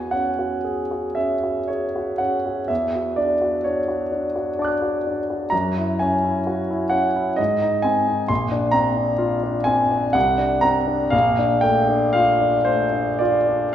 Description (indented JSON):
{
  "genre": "classical, impressionist solo piano",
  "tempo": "64 BPM",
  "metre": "3/4",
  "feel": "uneven beats, rubato",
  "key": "unclear",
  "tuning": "A4 = 440 Hz",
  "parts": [
    { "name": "warm concert grand piano", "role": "solo", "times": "0.0-13.7 s", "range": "A#1 to F#6", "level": "-18 LUFS", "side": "equal", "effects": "none" }
  ],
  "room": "wet recital hall reverb, RT60 1.5 s",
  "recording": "heard from further back in the room",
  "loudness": "-18 LUFS",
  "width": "side -10 dB against mid",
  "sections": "0.0-13.7 A section",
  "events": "none",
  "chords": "0.0 E69; 2.7 Dmaj7/E; 5.5 F#sus2; 7.4 G#; 8.3 A#add9; 10.2 Csus2; 11.1 A#maj7",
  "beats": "0.66 1.69 | 2.70 3.64 4.58 | 5.52 6.46 7.39 | 8.30 9.21 10.15 | 11.13 12.15 13.21"
}